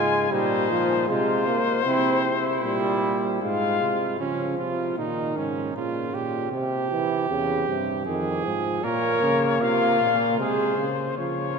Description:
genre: classical, imitative canzona for brass ensemble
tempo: 78 BPM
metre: 3/4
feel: straight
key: unclear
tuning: A4 = 440 Hz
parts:
  - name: warm cornet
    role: melody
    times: 0.0-4.2, 8.8-11.6 s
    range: C5 to Ab5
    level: -27 LUFS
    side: left 9 dB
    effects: none
  - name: warm flugelhorn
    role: second line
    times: 0.0-11.6 s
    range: Db4 to Bb4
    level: -28 LUFS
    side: right 4 dB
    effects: none
  - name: mellow trombone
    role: accompaniment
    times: 0.0-11.6 s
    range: C3 to C4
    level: -26 LUFS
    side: equal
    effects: none
  - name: clear bass trombone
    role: bass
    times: 0.0-11.6 s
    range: E2 to Db3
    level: -30 LUFS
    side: right 2 dB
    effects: none
room: wet cathedral reverb, RT60 5.4 s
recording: none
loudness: -22 LUFS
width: side -5 dB against mid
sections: 0.0-4.2 A section; 4.2-11.6 B section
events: none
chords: 0.0 Fm/Ab; 1.1 Ab/C; 1.9 C; 3.4 Fm/Ab; 4.2 Db; 5.8 Gdim/Bb; 6.5 C; 8.1 Fm; 8.8 Bbm; 10.4 Ab/C

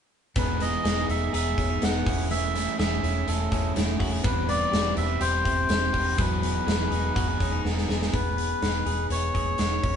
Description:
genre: jangly indie pop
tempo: 124 BPM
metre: 4/4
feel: straight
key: E major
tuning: A4 = 440 Hz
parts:
  - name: melodica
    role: melody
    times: 0.4-10.0 s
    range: A4 to F#5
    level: -28 LUFS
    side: equal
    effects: none
  - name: crunchy overdriven guitar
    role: accompaniment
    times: 0.4-8.1 s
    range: E3 to B4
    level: -32 LUFS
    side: right 5 dB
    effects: none
  - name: direct-recorded clean electric guitar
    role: arpeggios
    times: 0.4-10.0 s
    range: E3 to G#4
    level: -32 LUFS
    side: left 5 dB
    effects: none
  - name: vintage muted fingered electric bass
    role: bass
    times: 0.4-10.0 s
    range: E1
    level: -29 LUFS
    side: equal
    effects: none
  - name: big rock drum kit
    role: drums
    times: 0.4-9.9 s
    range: hi-hat, kick drum, snare drum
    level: -28 LUFS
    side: equal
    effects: none
room: light reverb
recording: band playing live in one room, nothing above 10.6 kHz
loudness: -23 LUFS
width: side -8 dB against mid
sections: 0.4-8.1 A section; 8.1-10.0 B section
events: drum fill 7.6-8.1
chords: 0.4 Emaj7; 2.1 Amaj7/E; 4.2 Cmaj7/E; 6.2 G#m7/E; 8.1 Emaj7

